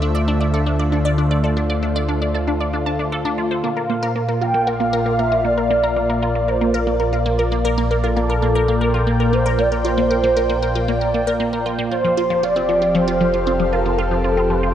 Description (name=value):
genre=ambient, sequencer-driven space music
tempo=116 BPM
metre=4/4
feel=straight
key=unclear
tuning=A4 = 440 Hz
part: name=lush unison pad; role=sustained chords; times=0.0-14.7 s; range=Bb2 to G5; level=-21 LUFS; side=equal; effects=chorus, phaser
part: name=resonant blip pluck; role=riff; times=0.0-14.7 s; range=F3 to A5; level=-23 LUFS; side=equal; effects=phaser, tape echo
part: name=round analog bass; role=bass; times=0.0-14.7 s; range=F1 to D2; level=-24 LUFS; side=equal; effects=tube saturation
part: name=expressive portamento lead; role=melody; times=3.6-14.7 s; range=A4 to G5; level=-20 LUFS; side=right 1 dB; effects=ensemble chorus, tape echo
room=wet plate reverb, RT60 3.5 s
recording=echo-heavy mix, cassette tape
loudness=-16 LUFS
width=side -10 dB against mid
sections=0.0-14.7 A section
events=fade-in on analog synth bass 0.0-14.7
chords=0.0 Dm7; 3.6 Bb; 11.9 Fadd9